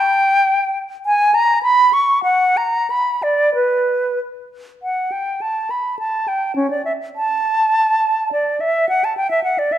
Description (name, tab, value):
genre	classical, baroque-style fantasia for unaccompanied flute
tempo	90-108 BPM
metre	3/4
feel	rubato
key	B minor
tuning	A4 = 440 Hz
part	bright concert flute	solo	0.0-9.8 s	C#4 to C#6	-15 LUFS	equal	none
room	moderate recital hall reverb, RT60 1.3 s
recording	dark, warm production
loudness	-15 LUFS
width	side -11 dB against mid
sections	0.0-4.8 A section; 4.8-9.8 A section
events	none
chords	none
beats	0.50 | 1.06 1.65 2.25 | 2.90 3.56 4.21 | 4.83 5.42 5.99 | 6.57 7.18 7.76 | 8.33 8.89 9.45